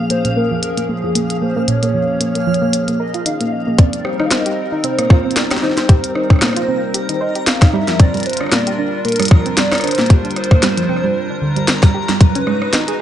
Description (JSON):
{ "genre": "IDM", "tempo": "114 BPM", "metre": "4/4", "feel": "swing 56% on 16ths", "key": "C minor", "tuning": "A4 = 440 Hz", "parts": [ { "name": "hollow soft pad", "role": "sustained chords", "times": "0.0-13.0 s", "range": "F3 to Cb5", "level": "-24 LUFS", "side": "equal", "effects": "chorus, vintage 12-bit sampler grit" }, { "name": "soft round pluck", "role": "arpeggios", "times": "0.0-13.0 s", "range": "Bb2 to C5", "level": "-19 LUFS", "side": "right 2 dB", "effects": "chorus, digital delay" }, { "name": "backwards swelling texture", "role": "texture", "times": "0.0-13.0 s", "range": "F5 to Bb5", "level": "-30 LUFS", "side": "left 2 dB", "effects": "built-in reverb, sidechain pumping" }, { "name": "warbly nostalgic lead", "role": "melody", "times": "0.1-13.0 s", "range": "Ab4 to F5", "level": "-21 LUFS", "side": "equal", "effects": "ensemble chorus, tape echo" }, { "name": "glitchy drum kit", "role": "drums", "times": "0.1-13.0 s", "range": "hi-hat, rim click, snare drum", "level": "-19 LUFS", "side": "equal", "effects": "none" }, { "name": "electronic kick drum", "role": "drums", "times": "3.8-12.3 s", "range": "none", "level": "-9 LUFS", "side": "left 1 dB", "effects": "none" } ], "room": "light reverb", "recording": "nothing above 11.0 kHz", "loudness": "-13 LUFS", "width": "side -11 dB against mid", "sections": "0.0-3.8 A section; 3.8-13.0 B section", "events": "filter sweep on synth arpeggio sound 0.0-3.8", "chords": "0.0 Bbm7; 3.8 Cm7; 7.7 Gm7; 12.2 Abm7" }